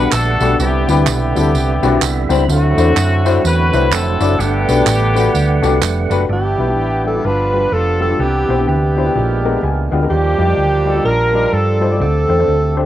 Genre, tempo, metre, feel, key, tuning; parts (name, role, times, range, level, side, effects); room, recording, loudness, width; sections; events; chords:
uptempo gospel; 126 BPM; 4/4; swing 60% on 8ths; G major; A4 = 440 Hz
clear horn section; melody; 0.0-12.9 s; A3 to B4; -21 LUFS; left 2 dB
warm upright piano; accompaniment; 0.0-12.8 s; G2 to Ab5; -19 LUFS; left 7 dB; cassette tape
percussive tonewheel organ; sustained chords; 0.0-12.9 s; C3 to B5; -22 LUFS; right 8 dB; fast rotary speaker, overdrive, cassette tape
hollow-body short-scale fingered electric bass; bass; 0.0-12.9 s; F1 to G2; -16 LUFS; equal
handclaps and tambourine; percussion; 0.1-6.2 s; -24 LUFS; right 9 dB
breathy alto saxophone; melody; 6.3-12.9 s; G4 to B4; -18 LUFS; right 2 dB
light reverb, studio ambience; home recording on cassette, faint mains hum; -12 LUFS; side -12 dB against mid
0.0-6.3 A section; 6.3-12.9 B section
tonewheel organ fill 1.5-2.5; upright piano fill 9.4-10.1
0.0 Gmaj9; 0.6 Cmaj9; 2.5 D9; 4.4 Gmaj9; 6.3 G6; 7.2 G7; 8.2 Cmaj9; 9.2 Bb7b9; 10.1 Ebmaj9; 12.0 D7sus4